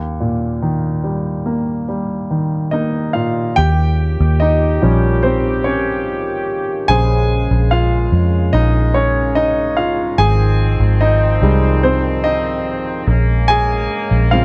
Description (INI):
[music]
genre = pop ballad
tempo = 72 BPM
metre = 4/4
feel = straight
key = unclear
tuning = A4 = 440 Hz
[part]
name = warm grand piano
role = accompaniment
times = 0.0-14.4 s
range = Eb2 to Ab5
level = -20 LUFS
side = equal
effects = none
[part]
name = warm brass ensemble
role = sustained chords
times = 3.6-14.4 s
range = Db3 to G4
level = -25 LUFS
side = equal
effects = none
[part]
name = vintage muted fingered electric bass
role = bass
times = 3.6-14.4 s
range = Ab1 to F2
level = -17 LUFS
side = equal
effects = none
[sound]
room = light reverb, studio ambience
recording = dark, warm production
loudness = -16 LUFS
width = mono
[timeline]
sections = 0.0-3.6 A section; 3.6-14.4 B section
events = grand piano solo 3.6-14.4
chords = 0.0 Eb; 3.6 Eb7; 6.9 Bbm7; 10.2 Fm7/Ab; 13.1 Bbm7